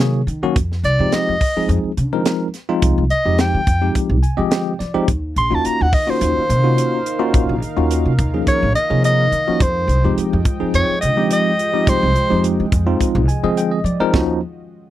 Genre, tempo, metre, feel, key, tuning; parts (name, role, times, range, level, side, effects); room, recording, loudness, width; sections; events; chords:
electric jazz fusion; 106 BPM; 4/4; swing 55% on 16ths; A4 = 440 Hz
bell-like tine electric piano; accompaniment; 0.0-14.4 s; Eb3 to Ab5; -19 LUFS; left 1 dB; medium stereo tremolo
upright bass; bass; 0.0-14.4 s; Bb1 to F3; -19 LUFS; equal
tight funk drum kit; drums; 0.0-14.3 s; hi-hat, kick drum, snare drum; -20 LUFS; equal
clear soprano saxophone; melody; 0.8-12.4 s; C5 to C6; -18 LUFS; equal; slapback echo
dark analog pad; sustained chords; 5.7-14.4 s; Eb3 to G5; -26 LUFS; right 2 dB; chorus
little or no reverb; dry, close 1970s-style studio recording; -15 LUFS; side -13 dB against mid
0.0-14.1 A section
soprano saxophone solo 0.0-14.1; tine electric piano fill 4.0-5.1, 13.0-14.1
0.0 Ebm7; 0.6 Fm9; 5.1 Ebm9; 9.6 Fm9; 14.1 Ebm9